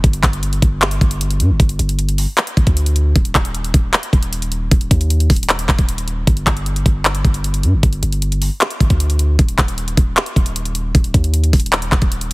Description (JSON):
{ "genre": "hip hop, trap", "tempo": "154 BPM", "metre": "4/4", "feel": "half-time", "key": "unclear", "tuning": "A4 = 438 Hz", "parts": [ { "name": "long sustained 808-style bass", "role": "bass", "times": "0.0-12.3 s", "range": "Eb1 to G2", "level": "-17 LUFS", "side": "equal", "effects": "none" }, { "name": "trap drum kit", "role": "drums", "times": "0.0-12.3 s", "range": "handclaps, hi-hat, kick drum", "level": "-15 LUFS", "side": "equal", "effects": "none" } ], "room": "little or no reverb", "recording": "heavily compressed radio sound, multiband compression", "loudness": "-14 LUFS", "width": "side -23 dB against mid", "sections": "0.0-6.3 A section; 6.3-12.3 B section", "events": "none", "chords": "none" }